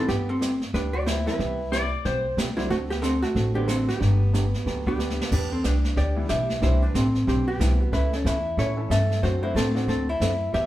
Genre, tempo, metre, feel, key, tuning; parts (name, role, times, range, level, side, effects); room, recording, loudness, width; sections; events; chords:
country, western swing; 184 BPM; 4/4; swing 61% on 8ths; G major; A4 = 440 Hz
vintage hollow-body jazz guitar; melody; 0.0-10.7 s; G3 to E5; -26 LUFS; equal
clear upright piano; accompaniment; 0.0-9.9 s; D3 to A4; -33 LUFS; right 1 dB
hollow-body jazz guitar; accompaniment; 0.1-10.7 s; C3 to A4; -33 LUFS; right 3 dB
upright bass; bass; 0.1-10.7 s; G1 to A2; -25 LUFS; equal
jazz brush drum kit; drums; 0.1-10.7 s; brushed snare drum, crash cymbal, hi-hat, kick drum, snare drum; -32 LUFS; equal
clean lap steel guitar; second line; 1.7-2.4 s; C5 to D5; -27 LUFS; left 2 dB
moderate studio reverb, RT60 0.9 s; band playing live in one room; -22 LUFS; side -14 dB against mid
0.0-5.3 A section; 5.3-10.7 B section
drum fill 5.0-5.3
0.1 G6; 1.4 Cmaj7; 2.7 D7; 4.0 Gmaj7; 5.3 Em7; 6.6 Cadd9; 7.9 A/C#; 9.2 D7